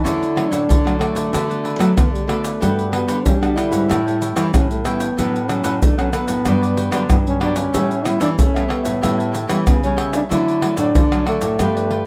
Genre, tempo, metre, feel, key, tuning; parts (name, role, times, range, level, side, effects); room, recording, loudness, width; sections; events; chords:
samba and choro; 94 BPM; 4/4; straight; D major; A4 = 440 Hz
breathy trombone; melody; 0.0-12.1 s; G3 to E4; -23 LUFS; equal
cavaquinho; accompaniment; 0.0-12.1 s; D4 to G5; -30 LUFS; equal
nylon-string guitar; accompaniment; 0.0-12.1 s; G2 to A4; -27 LUFS; equal
nylon-string guitar; bass; 0.0-12.0 s; G2 to A3; -25 LUFS; equal
tube shaker, surdo, pandeiro and tamborim; percussion; 0.1-12.1 s; -22 LUFS; equal
light reverb; close, detailed microphones; -18 LUFS; mono
0.1-12.1 A section
0.1 Dmaj7; 1.3 Bm7/D; 2.6 Gmaj9; 3.9 A7; 5.2 D6/A; 6.5 Gmaj7; 7.7 A9; 10.3 Dmaj7